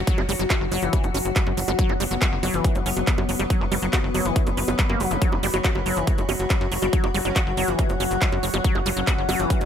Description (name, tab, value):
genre	psychedelic trance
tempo	140 BPM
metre	4/4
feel	straight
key	unclear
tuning	A4 = 440 Hz
part	pulsing gated texture	sustained chords	0.0-9.7 s	F#3 to F#4	-29 LUFS	left 3 dB	chorus, built-in reverb, sidechain pumping
part	tight sequencer bass	bass	0.0-9.7 s	F#1 to F#2	-28 LUFS	equal	none
part	downlifter and zap	sound effects	0.0-1.8, 5.1-5.2 s	none	-40 LUFS	right 1 dB	none
part	deep dark ambient pad	texture	0.0-9.7 s	F#4 to B5	-30 LUFS	left 2 dB	chorus, built-in reverb, sidechain pumping
part	liquid acid bass	riff	0.1-9.6 s	E3 to F#4	-28 LUFS	equal	chorus, auto-pan, sidechain pumping, ping-pong delay
part	big-room dance drum kit	drums	0.1-9.7 s	bongos, handclaps, hi-hat	-28 LUFS	right 2 dB	overdrive
part	electronic kick drum	drums	0.1-9.6 s	none	-22 LUFS	equal	none
part	metallic wobble bass	second line	5.6-7.7 s	A#3 to F#4	-40 LUFS	right 4 dB	none
room	digital ambience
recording	none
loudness	-20 LUFS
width	side -8 dB against mid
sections	0.0-9.7 A section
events	none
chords	0.0 F#5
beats	| 0.07 0.50 0.93 1.36 | 1.79 2.22 2.65 3.07 | 3.50 3.93 4.36 4.79 | 5.22 5.64 6.07 6.50 | 6.93 7.36 7.79 8.22 | 8.64 9.07 9.50